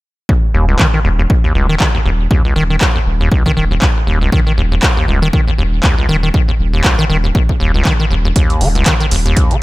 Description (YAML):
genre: acid house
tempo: 119 BPM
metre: 4/4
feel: swing 57% on 16ths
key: unclear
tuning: A4 = 440 Hz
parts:
  - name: acid bass, square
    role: riff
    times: 0.3-9.6 s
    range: Db2 to Eb3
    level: -16 LUFS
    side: equal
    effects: tube saturation, sidechain pumping, ping-pong delay
  - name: electronic kick drum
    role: drums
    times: 0.3-9.5 s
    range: none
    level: -14 LUFS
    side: equal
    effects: none
  - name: saturated sub bass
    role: bass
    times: 0.5-9.3 s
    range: Eb1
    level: -15 LUFS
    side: equal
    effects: sidechain pumping
  - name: punchy analog drum machine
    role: drums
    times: 0.8-9.6 s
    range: handclaps, hi-hat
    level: -18 LUFS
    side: equal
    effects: none
room: little or no reverb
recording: none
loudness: -11 LUFS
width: side -19 dB against mid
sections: 0.3-9.6 A section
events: none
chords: none